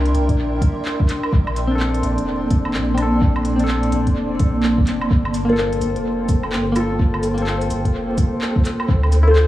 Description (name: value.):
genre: future garage.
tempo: 127 BPM.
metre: 4/4.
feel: swing 62% on 16ths.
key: G dorian.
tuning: A4 = 440 Hz.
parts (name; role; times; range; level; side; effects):
clean electric guitar; accompaniment; 0.0-9.5 s; Bb3 to C5; -23 LUFS; left 1 dB; sidechain pumping, dub echo.
granular cloud pad; sustained chords; 0.0-9.5 s; Bb3 to C6; -24 LUFS; right 1 dB; built-in reverb, vintage 12-bit sampler grit, sidechain pumping.
warm sub bass; bass; 0.0-9.5 s; F1 to D2; -21 LUFS; equal; tube saturation, sidechain pumping.
flickering grainy texture; texture; 0.1-9.5 s; C5 to D5; -33 LUFS; right 1 dB; built-in reverb.
organic electronic drum kit; drums; 0.1-9.5 s; cabasa, handclaps, hi-hat, woodblock; -29 LUFS; right 1 dB; studio reverb, tape echo.
electronic kick drum; drums; 0.3-9.0 s; none; -17 LUFS; equal; studio reverb.
kalimba; melody; 5.5-9.5 s; F4 to Bb4; -23 LUFS; left 2 dB; vintage 12-bit sampler grit, tape echo.
room: light reverb.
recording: echo-heavy mix, vinyl crackle, small room ambience.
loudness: -16 LUFS.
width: side -14 dB against mid.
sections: 0.0-9.5 A section.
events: none.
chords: 0.0 C7; 1.3 Bbmaj9; 5.1 Gm9; 8.9 Dm7.